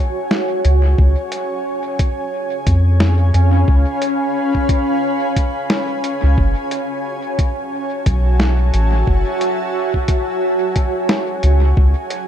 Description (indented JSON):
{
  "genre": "ambient dub",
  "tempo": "89 BPM",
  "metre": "4/4",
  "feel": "swing 57% on 16ths",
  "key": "F# minor",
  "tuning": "A4 = 440 Hz",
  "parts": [
    { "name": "granular cloud pad", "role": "sustained chords", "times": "0.0-12.3 s", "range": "C#4 to B5", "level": "-19 LUFS", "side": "right 1 dB", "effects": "built-in reverb" },
    { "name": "lo-fi sampler-style drum kit", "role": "drums", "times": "0.3-12.3 s", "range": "hi-hat, snare drum", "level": "-22 LUFS", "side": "equal", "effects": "dub echo" },
    { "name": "soft dub sub bass", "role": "bass", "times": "0.6-11.9 s", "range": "F#1 to E#2", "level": "-13 LUFS", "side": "equal", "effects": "none" },
    { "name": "electronic kick drum", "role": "drums", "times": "1.0-11.9 s", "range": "none", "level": "-16 LUFS", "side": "equal", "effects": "none" }
  ],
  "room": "digital ambience",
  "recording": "echo-heavy mix",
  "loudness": "-14 LUFS",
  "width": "side -10 dB against mid",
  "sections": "0.0-12.3 A section",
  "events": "none",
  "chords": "0.0 F#m7; 1.0 C#7; 6.4 F#m7; 11.8 C#7(no3)"
}